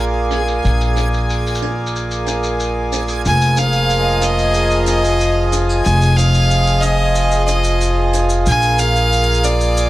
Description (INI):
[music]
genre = folktronica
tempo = 92 BPM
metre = 4/4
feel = straight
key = F dorian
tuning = A4 = 441 Hz
[part]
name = pedal harmonium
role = sustained chords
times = 0.0-9.9 s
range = F3 to Eb5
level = -19 LUFS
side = right 1 dB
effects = none
[part]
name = upright bass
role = bass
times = 0.0-9.9 s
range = F1 to Bb1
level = -17 LUFS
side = equal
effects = none
[part]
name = backwards swelling texture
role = texture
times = 0.0-9.9 s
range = Ab4 to Ab5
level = -27 LUFS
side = left 1 dB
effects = built-in reverb
[part]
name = hi-hat and shaker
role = drums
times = 0.3-9.9 s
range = none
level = -26 LUFS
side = equal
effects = low-pass filter on hats, low-pass filter on perc, low-pass filter on room
[part]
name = clear violin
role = melody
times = 3.3-9.9 s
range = D5 to Ab5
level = -18 LUFS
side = equal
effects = digital delay
[sound]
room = light reverb, small room reverb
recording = none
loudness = -13 LUFS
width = side -16 dB against mid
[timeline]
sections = 0.0-9.9 A section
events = none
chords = 0.0 Bb7; 3.3 Fm7; 8.5 Bb7